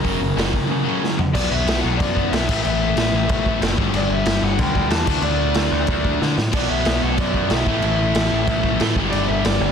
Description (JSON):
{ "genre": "punk rock", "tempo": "185 BPM", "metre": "4/4", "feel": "straight", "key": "B minor", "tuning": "A4 = 439 Hz", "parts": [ { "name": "raw garage guitar", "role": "melody", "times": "0.0-9.7 s", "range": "A#4 to A5", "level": "-25 LUFS", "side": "left 2 dB", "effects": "overdrive" }, { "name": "distorted electric guitar", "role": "riff", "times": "0.0-1.3, 6.5-9.7 s", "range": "F#2 to B3", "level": "-26 LUFS", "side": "right 12 dB", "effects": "distortion" }, { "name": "distorted electric guitar", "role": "riff", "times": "0.0-9.7 s", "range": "F#2 to D4", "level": "-26 LUFS", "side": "equal", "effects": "overdrive" }, { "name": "sludgy distorted guitar", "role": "riff", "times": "0.0-9.7 s", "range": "F#2 to D4", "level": "-25 LUFS", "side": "left 15 dB", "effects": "overdrive" }, { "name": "growling picked electric bass", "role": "bass", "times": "0.0-9.7 s", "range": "F#1 to D3", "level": "-23 LUFS", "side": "right 1 dB", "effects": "overdrive" }, { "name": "raw garage drum kit", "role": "drums", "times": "0.0-9.5 s", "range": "crash cymbal, hi-hat, kick drum, snare drum, toms", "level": "-22 LUFS", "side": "right 1 dB", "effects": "none" } ], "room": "little or no reverb", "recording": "dense, heavily limited modern master", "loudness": "-17 LUFS", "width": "side -7 dB against mid", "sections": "0.0-1.4 A section; 1.4-9.7 B section", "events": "drum fill 1.0-1.4, 6.2-6.5", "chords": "0.0 F#; 1.4 Bm; 2.5 A5; 3.8 G5; 5.1 D5; 6.5 Bm; 7.7 A5; 9.0 G5" }